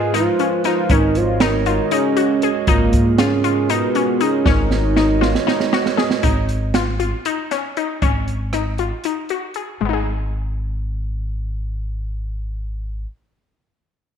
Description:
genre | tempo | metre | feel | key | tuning
progressive instrumental, band music in an uneven meter | 236 BPM (eighths) | 7/8 | straight | G# dorian | A4 = 440 Hz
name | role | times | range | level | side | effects
lead with added fifth | melody | 0.0-5.7 s | A#3 to G#4 | -19 LUFS | equal | chorus
dark analog pad | accompaniment | 0.0-6.2 s | G#3 to D#5 | -23 LUFS | right 11 dB | chorus
glassy wavetable pluck | arpeggios | 0.0-13.2 s | G#3 to G#4 | -22 LUFS | left 8 dB | chorus
upright bass | bass | 0.0-13.0 s | G#1 to G#2 | -22 LUFS | equal | none
open jazz drum kit | drums | 0.1-9.7 s | hi-hat, kick drum, rim click, snare drum | -21 LUFS | right 3 dB | none
room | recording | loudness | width
moderate echo chamber reverb, RT60 1.4 s, studio ambience | 1960s-style stereo with parts hard left and right | -16 LUFS | side -7 dB against mid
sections
0.0-6.2 A section; 6.2-9.8 B section; 9.8-13.4 C section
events
drum fill 4.5-6.2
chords
0.0 G#m69; 0.9 G#13sus4; 2.7 G#m69; 4.5 G#9sus4; 6.2 G#5; 8.0 G#sus4; 9.8 G#m

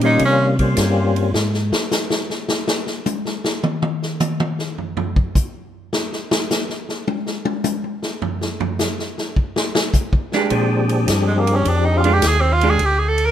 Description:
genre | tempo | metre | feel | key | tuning
soul jazz organ trio | 105 BPM | 4/4 | swing 68% on 8ths | unclear | A4 = 440 Hz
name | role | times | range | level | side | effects
percussive tonewheel organ | melody | 0.0-1.3, 10.5-12.1 s | F3 to Ab4 | -20 LUFS | left 2 dB | slow rotary speaker, overdrive, chorus vibrato
vintage hollow-body jazz guitar | accompaniment | 0.0-0.5, 10.3-12.8 s | Eb3 to C5 | -21 LUFS | right 3 dB | none
mellow tonewheel organ | bass | 0.0-1.7, 10.5-13.3 s | D2 to C3 | -18 LUFS | equal | slow rotary speaker
swinging big-band drum kit | drums | 0.0-13.3 s | hi-hat, kick drum, ride cymbal, snare drum, toms | -21 LUFS | left 1 dB | none
bright tenor saxophone | melody | 0.1-0.5, 11.3-13.3 s | Ab3 to Bb4 | -18 LUFS | right 2 dB | none
room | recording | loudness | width
light reverb | minimal, uncompressed stereo recording | -17 LUFS | side -10 dB against mid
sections
0.0-13.3 A section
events
tenor saxophone solo 0.0-13.3; drum solo 1.3-10.5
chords
0.0 Eb13; 1.3 N.C.; 5.9 G5; 10.5 Bb13

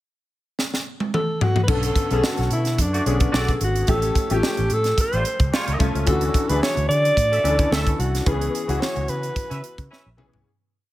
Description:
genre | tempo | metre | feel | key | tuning
polished 1980s jazz-funk pop | 109 BPM | 4/4 | swing 54% on 16ths | B dorian | A4 = 439 Hz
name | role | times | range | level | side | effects
crisp fusion drum kit | drums | 0.6-10.5 s | crash cymbal, hi-hat, kick drum, snare drum, toms | -23 LUFS | equal | none
breathy alto saxophone | melody | 1.1-9.9 s | D4 to D5 | -24 LUFS | equal | none
clear grand piano | accompaniment | 1.7-10.5 s | D3 to A4 | -26 LUFS | left 3 dB | ensemble chorus
vintage muted fingered electric bass | bass | 1.7-10.4 s | G#1 to D3 | -24 LUFS | equal | none
mellow horn section | second line | 2.9-10.1 s | G3 to E5 | -30 LUFS | right 1 dB | none
room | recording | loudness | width
light reverb, studio reverb | none | -19 LUFS | side -15 dB against mid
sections
0.0-1.7 pickup bar; 1.7-10.5 verse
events
drum fill 0.6-1.7, 9.9-10.5; fade-out 8.3-10.5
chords
0.0 N.C.; 1.7 Bm9; 3.9 A7alt; 6.1 Dmaj9; 8.3 C#m7

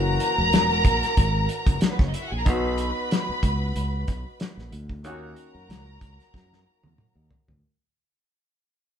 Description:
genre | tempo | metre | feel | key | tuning
lush 1970s-style soul | 93 BPM | 4/4 | swing 54% on 16ths | unclear | A4 = 439 Hz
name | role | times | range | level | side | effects
warm studio violin section | second line | 0.0-7.3 s | B3 to B5 | -26 LUFS | equal | none
warm baby grand piano | accompaniment | 0.0-7.6 s | D#3 to F#4 | -32 LUFS | left 3 dB | none
fingered electric bass | bass | 0.0-7.6 s | E1 to F#2 | -28 LUFS | equal | none
cloth-damped thuddy drum kit | drums | 0.2-7.6 s | hi-hat, kick drum, snare drum, toms | -23 LUFS | equal | none
warm horn section | stabs | 5.0-5.5 s | D#3 to F#4 | -47 LUFS | right 1 dB | none
room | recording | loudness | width
light reverb | band playing live in one room | -21 LUFS | side -8 dB against mid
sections
0.0-7.6 A section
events
fade-out 0.0-7.6; band accent 5.0-7.6; drum fill 6.3-7.6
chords
0.0 F#7; 2.5 B; 5.0 D#m7

